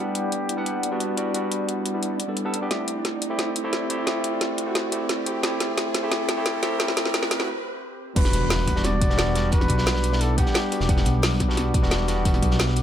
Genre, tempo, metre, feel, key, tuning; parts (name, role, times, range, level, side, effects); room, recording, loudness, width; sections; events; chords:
liquid drum and bass; 176 BPM; 4/4; straight; E minor; A4 = 442 Hz
trumpet with bucket mute; melody; 0.0-1.1, 8.2-11.4 s; G4 to D5; -29 LUFS; left 1 dB; low-pass filter, tape echo
barky tine electric piano; accompaniment; 0.0-12.8 s; G3 to F#5; -27 LUFS; equal; ping-pong delay
airy breathy pad; sustained chords; 0.0-12.8 s; G3 to D6; -33 LUFS; equal; chorus, sidechain pumping
riser and impact; sound effects; 0.8-9.5 s; -33 LUFS; right 1 dB
drum and bass drum kit; drums; 0.2-12.8 s; crash cymbal, hi-hat, snare drum; -27 LUFS; equal
dark detuned saw bass; bass; 8.2-12.8 s; E1 to B1; -24 LUFS; equal
crunchy breakbeat drum kit; drums; 8.2-12.8 s; hi-hat, snare drum; -33 LUFS; equal; high-pass filter on hats, high-pass filter on snare, high-pass filter on room
electronic kick drum; drums; 8.2-12.5 s; -23 LUFS; equal
light reverb, small room ambience; high-pass filter; -21 LUFS; side -10 dB against mid
0.0-8.2 A section; 8.2-12.8 B section
build-up 0.0-8.2; filter sweep 0.0-8.2; riser 0.8-7.5; drum fill 2.7-7.5; break 7.5-8.2; drop 8.2-12.8; impact 8.2-9.5
0.0 Em9; 2.7 D7sus4; 8.2 Em9